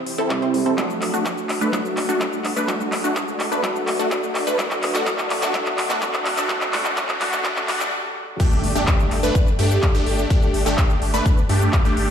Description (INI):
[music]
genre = EDM, festival progressive house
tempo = 126 BPM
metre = 4/4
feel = straight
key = unclear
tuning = A4 = 442 Hz
[part]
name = felt-muted upright piano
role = accompaniment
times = 0.0-8.4 s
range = C3 to G4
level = -28 LUFS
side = right 3 dB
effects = sidechain pumping, dub echo
[part]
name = riser, swell and impact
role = sound effects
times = 0.0-10.3 s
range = none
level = -33 LUFS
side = equal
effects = none
[part]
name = big-room dance drum kit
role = drums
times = 0.1-12.1 s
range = crash cymbal, handclaps, hi-hat, shaker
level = -25 LUFS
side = equal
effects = overdrive, small room ambience
[part]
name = supersaw stab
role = riff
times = 0.2-12.1 s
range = A3 to C5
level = -22 LUFS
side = equal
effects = phaser, sidechain pumping, low-pass filter, dub echo
[part]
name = electronic kick drum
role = drums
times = 0.3-11.8 s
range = none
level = -20 LUFS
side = equal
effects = high-pass filter on kick, small room ambience, high-pass filter on room
[part]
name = saturated sub bass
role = bass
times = 8.6-12.1 s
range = G1 to G2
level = -22 LUFS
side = equal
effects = sidechain pumping
[sound]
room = moderate lush hall reverb, RT60 1.9 s, digital ambience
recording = played on a big sound system in a bare room, stone room reverb, high-pass filter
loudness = -18 LUFS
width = side -8 dB against mid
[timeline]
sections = 0.0-8.4 A section; 8.4-12.1 B section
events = build-up 0.0-8.4; drum fill 0.0-7.9; filter sweep on supersaw synth 0.0-8.4; filter sweep 0.0-8.4; swell 7.4-8.4; stop 7.9-8.4; drop 8.4-12.1; impact 8.4-10.3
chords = 0.0 C; 0.8 D; 4.6 D/F#; 8.4 Gsus2